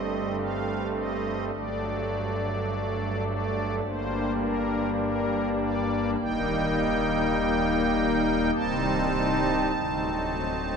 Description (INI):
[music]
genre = classical, chorale-style piece for pipe organ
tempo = 47-53 BPM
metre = 4/4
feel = rubato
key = G minor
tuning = A4 = 440 Hz
[part]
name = pipe organ, strings celeste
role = solo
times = 0.0-10.8 s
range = C1 to A5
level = -24 LUFS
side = equal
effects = none
[sound]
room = wet cathedral reverb, RT60 5.7 s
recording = minimal, uncompressed stereo recording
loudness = -24 LUFS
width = side -6 dB against mid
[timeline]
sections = 0.0-10.8 A section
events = none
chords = 0.0 Am7b5/G; 1.5 D/G; 3.8 Gm; 6.2 Eb; 8.5 Am7b5/C; 9.8 D7b9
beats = 0.39 | 1.55 2.70 3.85 4.99 | 6.20 7.37 8.55 9.75